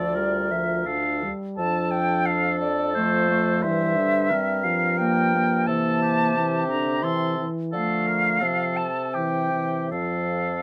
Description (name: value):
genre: classical, slow romantic movement for wind quintet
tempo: 76-90 BPM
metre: 3/4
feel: rubato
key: unclear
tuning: A4 = 440 Hz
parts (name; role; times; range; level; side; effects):
- bright concert flute; melody; 0.0-10.6 s; C5 to C6; -27 LUFS; equal; none
- mellow oboe; second line; 0.0-10.6 s; G4 to C5; -31 LUFS; equal; none
- dark French horn; accompaniment; 0.0-10.6 s; D3 to G3; -30 LUFS; equal; none
- mellow clarinet; accompaniment; 0.0-10.6 s; G3 to F4; -32 LUFS; equal; none
- mellow bassoon; bass; 0.0-10.6 s; D2 to D3; -32 LUFS; equal; none
room: light reverb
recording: none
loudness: -23 LUFS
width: mono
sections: 0.0-10.6 A section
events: none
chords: 0.0 Dm; 1.6 Dm/F; 3.6 Gm7; 5.7 C7; 7.7 Dm; 8.4 F/C; 9.1 C; 9.9 F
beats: 0.15 0.87 | 1.58 2.28 2.96 | 3.64 4.31 5.00 | 5.68 6.35 7.04 | 7.73 8.42 9.14 | 9.92